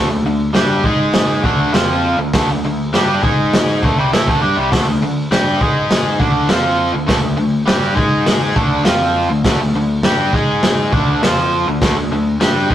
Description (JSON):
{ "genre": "garage rock duo or trio", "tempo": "101 BPM", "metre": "4/4", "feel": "straight", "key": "unclear", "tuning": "A4 = 438 Hz", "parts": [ { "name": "overdriven electric guitar", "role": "riff", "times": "0.0-12.7 s", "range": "C3 to G#4", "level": "-16 LUFS", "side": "equal", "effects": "none" }, { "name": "growling picked electric bass", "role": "bass", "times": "0.0-12.7 s", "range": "C2 to A2", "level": "-22 LUFS", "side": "equal", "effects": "overdrive" }, { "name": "crunchy breakbeat drum kit", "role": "drums", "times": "0.5-12.7 s", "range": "hi-hat, kick drum, snare drum", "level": "-17 LUFS", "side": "equal", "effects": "none" } ], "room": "moderate stone room reverb, RT60 0.9 s", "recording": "rough rehearsal-room recording", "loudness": "-13 LUFS", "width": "side -11 dB against mid", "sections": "0.0-12.7 A section", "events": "none", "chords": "0.0 D5; 0.8 G#5; 1.4 D5; 3.2 G#5; 3.8 D5; 5.6 G#5; 6.2 D5; 8.0 G#5; 8.6 D5; 10.3 G#5; 10.9 D5" }